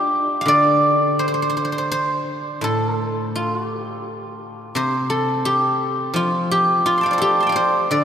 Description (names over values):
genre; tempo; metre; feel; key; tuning
chinese traditional; 84 BPM; 4/4; rubato; G shang mode; A4 = 441 Hz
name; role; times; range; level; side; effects
guzheng; solo; 0.0-8.0 s; A2 to C6; -17 LUFS; equal; none
room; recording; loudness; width
wet cathedral reverb, RT60 5.9 s; in a vast, echoing space; -17 LUFS; side -8 dB against mid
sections
0.0-8.0 A section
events
none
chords
none